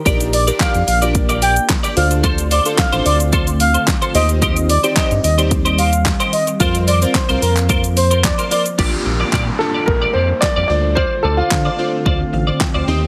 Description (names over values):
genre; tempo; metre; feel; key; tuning
dance-pop; 110 BPM; 4/4; straight; Bb major; A4 = 442 Hz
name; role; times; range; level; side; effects
glassy FM pad; sustained chords; 0.0-13.1 s; D3 to G4; -28 LUFS; equal; ensemble chorus, built-in reverb, phaser, sidechain pumping
glassy digital keys; accompaniment; 0.1-13.1 s; C4 to G5; -26 LUFS; equal; chorus, sidechain pumping
twelve-string electric guitar; riff; 0.1-13.1 s; Eb4 to Eb5; -24 LUFS; equal; ensemble chorus
round analog bass; bass; 0.1-13.1 s; A1 to D3; -20 LUFS; equal; sidechain pumping
pop drum kit; drums; 0.1-12.7 s; crash cymbal, handclaps, hi-hat, kick drum, shaker, snare drum; -21 LUFS; equal; none
expressive synth lead; melody; 0.3-8.6 s; Bb4 to G5; -22 LUFS; equal; chorus, sidechain pumping, tape echo
downlifter; sound effects; 8.8-13.1 s; none; -31 LUFS; equal; none
dark concert grand piano; melody; 9.6-12.4 s; F4 to D5; -21 LUFS; equal; tape echo
room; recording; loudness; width
light reverb, digital ambience; heavily compressed radio sound; -16 LUFS; mono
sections
0.0-8.8 A section; 8.8-13.1 B section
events
drop 0.0-8.8; synth keys fill 12.1-13.1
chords
0.1 Bb6; 2.0 Dm7; 4.1 Cm/Eb; 6.6 Fsus4; 8.8 Bb6; 10.7 Dm7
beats
| 0.06 0.60 1.15 1.69 | 2.24 2.79 3.33 3.88 | 4.42 4.97 5.51 6.06 | 6.60 7.15 7.69 8.24 | 8.79 9.33 9.88 10.42 | 10.97 11.51 12.06 12.60